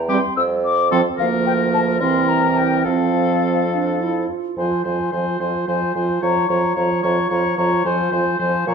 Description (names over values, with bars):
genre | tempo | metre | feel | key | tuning
quick classical-period movement for wind quintet | 73 BPM (dotted quarters) | 6/8 | rubato | F major, F minor from 4.6 s | A4 = 439 Hz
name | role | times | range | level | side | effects
warm bassoon | bass | 0.0-8.7 s | C2 to Bb2 | -23 LUFS | right 3 dB | none
mellow hollow silver concert flute | melody | 0.1-8.7 s | F5 to E6 | -23 LUFS | left 8 dB | none
warm oboe | second line | 0.1-8.7 s | G4 to Db5 | -24 LUFS | left 4 dB | none
clear French horn | accompaniment | 0.1-8.7 s | E3 to G3 | -24 LUFS | equal | none
dark clarinet | accompaniment | 0.1-8.7 s | Bb3 to F4 | -23 LUFS | right 10 dB | none
room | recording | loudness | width
wet recital hall reverb, RT60 1.3 s | dark, warm production | -16 LUFS | side -6 dB against mid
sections
0.0-4.6 A section; 4.6-8.7 B section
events
none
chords
0.4 N.C.; 1.2 Bb/D; 2.0 C7; 2.9 F; 4.6 Fm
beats
0.37 | 1.19 2.00 | 2.85 3.72 | 4.57 5.40 | 6.22 7.03 | 7.85 8.67